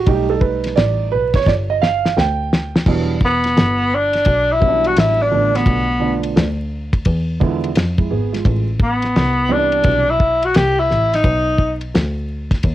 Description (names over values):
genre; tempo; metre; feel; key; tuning
hip hop, jazz-hop; 86 BPM; 4/4; swing 65% on 16ths; E minor; A4 = 438 Hz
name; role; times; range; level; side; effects
dark concert grand piano; accompaniment; 0.0-10.1 s; C3 to G5; -20 LUFS; right 7 dB; cassette tape
rich double bass; bass; 0.0-12.7 s; E1 to F2; -21 LUFS; equal; transformer saturation
cloth-damped thuddy drum kit; drums; 0.1-12.7 s; crash cymbal, hi-hat, kick drum, ride cymbal, snare drum; -16 LUFS; equal; cassette tape
breathy tenor saxophone; melody; 3.2-11.8 s; B3 to G4; -16 LUFS; left 1 dB; cassette tape, plate reverb
room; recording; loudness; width
light reverb; home recording on cassette, vinyl crackle; -14 LUFS; side -14 dB against mid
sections
0.0-2.9 A section; 2.9-12.7 B section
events
grand piano solo 0.0-2.9; drum fill 1.5-2.9; break 11.2-12.7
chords
0.1 B7alt; 2.9 Em9; 5.7 Bm7b5; 7.1 E7b9; 8.4 Am11; 11.2 B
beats
| 0.08 0.77 1.47 2.17 | 2.87 3.56 4.26 4.96 | 5.66 6.36 7.05 7.75 | 8.45 9.15 9.84 10.54 | 11.24 11.94 12.63